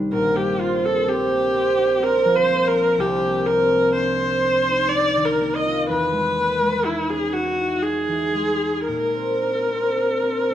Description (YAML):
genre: classical, impressionist duo for viola and harp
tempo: 62 BPM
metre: 3/4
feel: uneven beats, rubato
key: Bb lydian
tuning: A4 = 440 Hz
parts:
  - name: concert harp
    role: accompaniment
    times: 0.0-10.5 s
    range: Bb1 to G#4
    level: -22 LUFS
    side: right 2 dB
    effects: none
  - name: rich viola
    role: melody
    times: 0.1-10.5 s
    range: E4 to Eb5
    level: -20 LUFS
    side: left 1 dB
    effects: none
room: moderate scoring stage reverb, RT60 1.7 s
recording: close, detailed microphones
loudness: -18 LUFS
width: side -11 dB against mid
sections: 0.0-10.5 A section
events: none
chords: 0.1 Bb69; 3.0 Cm11; 5.9 Emaj7; 8.9 Bbadd9